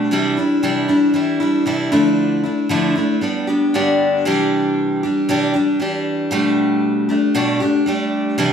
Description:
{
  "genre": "pop",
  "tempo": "116 BPM",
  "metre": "4/4",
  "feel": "swing 55% on 16ths",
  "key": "C major",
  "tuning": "A4 = 437 Hz",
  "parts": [
    { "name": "picked steel-string acoustic guitar", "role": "solo", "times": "0.0-8.5 s", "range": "G2 to G4", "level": "-15 LUFS", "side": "equal", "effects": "none" }
  ],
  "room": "wet large studio reverb, RT60 0.9 s",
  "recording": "band playing live in one room",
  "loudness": "-15 LUFS",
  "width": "side -7 dB against mid",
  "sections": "0.0-4.2 A section; 4.2-8.5 B section",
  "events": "none",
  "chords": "0.1 Cadd9; 1.9 Dmadd9; 3.2 G; 4.2 Cadd9; 6.3 Gadd9/B",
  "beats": "| 0.10 0.62 1.14 1.66 | 2.18 2.69 3.21 3.73 | 4.25 4.76 5.28 5.80 | 6.31 6.83 7.34 7.86 | 8.38"
}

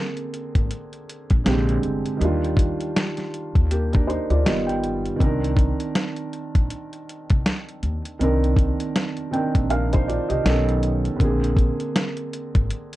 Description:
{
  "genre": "lo-fi hip hop",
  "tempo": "80 BPM",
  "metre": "4/4",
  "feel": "swing 58% on 16ths",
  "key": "C minor",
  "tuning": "A4 = 440 Hz",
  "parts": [
    { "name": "felt-muted upright piano", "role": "accompaniment", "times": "0.0-13.0 s", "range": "C3 to G5", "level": "-25 LUFS", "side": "right 2 dB", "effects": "cassette tape, low-pass filter, plate reverb" },
    { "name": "dusty soul sampler-style drum kit", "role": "drums", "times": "0.2-13.0 s", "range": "hi-hat, kick drum, snare drum", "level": "-21 LUFS", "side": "equal", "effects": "none" },
    { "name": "upright bass", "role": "bass", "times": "0.6-12.7 s", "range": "G1 to Eb2", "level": "-24 LUFS", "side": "equal", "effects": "none" }
  ],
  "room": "light reverb",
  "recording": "dark, warm production",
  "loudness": "-20 LUFS",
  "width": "side -16 dB against mid",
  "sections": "0.0-13.0 A section",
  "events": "felt piano fill 4.1-5.2, 8.9-11.2",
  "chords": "0.0 Bb9; 1.4 Bb13; 2.2 Ebmaj9; 4.4 Gaug7; 5.2 Cm9; 10.4 B9; 11.2 Bb9",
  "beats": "0.70 1.45 | 2.20 2.95 3.70 4.45 | 5.20 5.95 6.70 7.45 | 8.20 8.95 9.70 10.45 | 11.20 11.95 12.70"
}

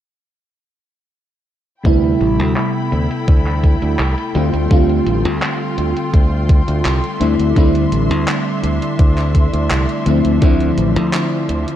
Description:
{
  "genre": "vaporwave",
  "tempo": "84 BPM",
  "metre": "4/4",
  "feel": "straight",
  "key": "unclear",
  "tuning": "A4 = 440 Hz",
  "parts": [
    { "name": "FM electric piano with soft pad layer", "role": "accompaniment", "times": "1.8-11.8 s", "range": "C3 to F4", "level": "-17 LUFS", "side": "equal", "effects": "lush chorus, analog delay" },
    { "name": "rich studio string section", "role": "sustained chords", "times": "1.8-11.8 s", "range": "F3 to C6", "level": "-25 LUFS", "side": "equal", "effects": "none" },
    { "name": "modern bright fingered electric bass", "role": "bass", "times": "1.9-11.6 s", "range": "A1 to D2", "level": "-18 LUFS", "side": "equal", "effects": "tube saturation" },
    { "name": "electronic kick drum", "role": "drums", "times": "1.9-10.6 s", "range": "none", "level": "-12 LUFS", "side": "equal", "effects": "none" },
    { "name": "gated 80s digital drum machine", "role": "drums", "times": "1.9-11.8 s", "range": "handclaps, hi-hat", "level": "-25 LUFS", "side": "equal", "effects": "gated reverb, low-pass filter on hats, low-pass filter on snare, low-pass filter on room" }
  ],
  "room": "light reverb, digital ambience",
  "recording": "dark, warm production",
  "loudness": "-13 LUFS",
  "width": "side -11 dB against mid",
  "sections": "1.8-11.8 A section",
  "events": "none",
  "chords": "1.8 Am11; 4.3 G9sus4; 7.2 C69; 10.1 Dm9",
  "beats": "| 1.85 2.56 3.28 3.99 | 4.71 5.42 6.13 6.85 | 7.56 8.28 8.99 9.71 | 10.42 11.13"
}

